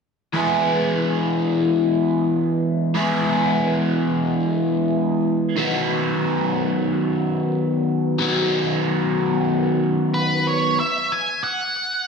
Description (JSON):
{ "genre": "rock", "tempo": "92 BPM", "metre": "4/4", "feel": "straight", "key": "E major", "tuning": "A4 = 441 Hz", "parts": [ { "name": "overdriven electric guitar", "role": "riff", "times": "0.3-10.8 s", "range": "D#3 to G#4", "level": "-18 LUFS", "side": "equal", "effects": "phaser" }, { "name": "octave-fuzz lead guitar", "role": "melody", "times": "10.1-12.1 s", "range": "B4 to G#5", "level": "-20 LUFS", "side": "right 1 dB", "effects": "distortion, ping-pong delay" } ], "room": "wet lush hall reverb, RT60 1.7 s, digital ambience", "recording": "dreamy mix soaked in reverb", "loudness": "-18 LUFS", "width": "side -5 dB against mid", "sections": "0.3-10.8 A section; 10.8-12.1 B section", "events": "none", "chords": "0.3 E; 5.6 B/D#; 10.8 N.C." }